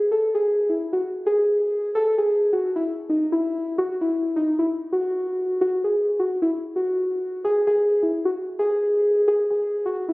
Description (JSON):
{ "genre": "hip hop", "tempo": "131 BPM", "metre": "4/4", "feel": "half-time", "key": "unclear", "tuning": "A4 = 439 Hz", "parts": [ { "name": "muted felt-like synth keys", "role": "solo", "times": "0.0-10.1 s", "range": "D#4 to A4", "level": "-20 LUFS", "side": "equal", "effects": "chorus" } ], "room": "moderate recital hall reverb, RT60 1.7 s", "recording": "recorded on a phone in the room, studio reverb, compression, lossy compression artefacts", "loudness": "-20 LUFS", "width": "side -21 dB against mid", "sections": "0.0-10.1 A section", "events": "none", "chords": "none" }